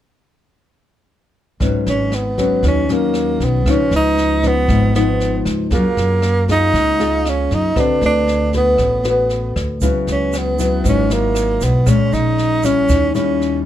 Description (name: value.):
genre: bossa nova.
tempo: 117 BPM.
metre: 4/4.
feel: straight.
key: G# minor.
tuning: A4 = 445 Hz.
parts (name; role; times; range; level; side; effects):
nylon-string guitar; accompaniment; 1.6-13.7 s; G#2 to B4; -18 LUFS; left 4 dB; none.
upright bass; bass; 1.6-13.6 s; G#1 to F#2; -20 LUFS; right 1 dB; none.
jazz brush drum kit; drums; 1.6-13.5 s; kick drum, rim click, snare drum; -24 LUFS; equal; none.
breathy tenor saxophone; melody; 1.9-13.6 s; A#3 to D#4; -18 LUFS; right 2 dB; none.
egg shaker; percussion; 9.8-13.4 s; none; -34 LUFS; right 11 dB; none.
room: light reverb.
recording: dark, warm production.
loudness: -14 LUFS.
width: side -11 dB against mid.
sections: 1.6-13.7 A section.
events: none.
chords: 1.6 G#m11; 3.7 C#9; 5.7 F#maj9; 7.8 D6; 9.8 C#m7; 11.9 A#m7b5; 12.9 D#7b9.